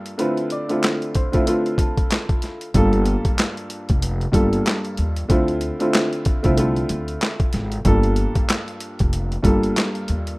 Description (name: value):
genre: hip hop, boom-bap hip-hop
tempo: 94 BPM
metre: 4/4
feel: swing 58% on 16ths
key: G minor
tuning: A4 = 440 Hz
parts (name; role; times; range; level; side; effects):
- dark grand piano; accompaniment; 0.0-10.3 s; G2 to A4; -22 LUFS; equal; cassette tape, high-pass filter, low-pass filter
- boom bap sampler-style drum kit; drums; 0.1-10.4 s; handclaps, hi-hat, kick drum, snare drum; -20 LUFS; equal; none
- clear upright piano; melody; 0.2-2.3 s; A4 to D5; -32 LUFS; equal; high-pass filter, low-pass filter, digital delay
- upright bass; bass; 2.7-10.3 s; F1 to Eb2; -22 LUFS; equal; none
room: small room reverb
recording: rough home demo mix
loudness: -18 LUFS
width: side -24 dB against mid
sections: 0.0-2.7 A section; 2.7-10.4 B section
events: none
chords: 0.2 Dm9; 2.7 Gm9; 5.3 Dm9; 7.9 Gm9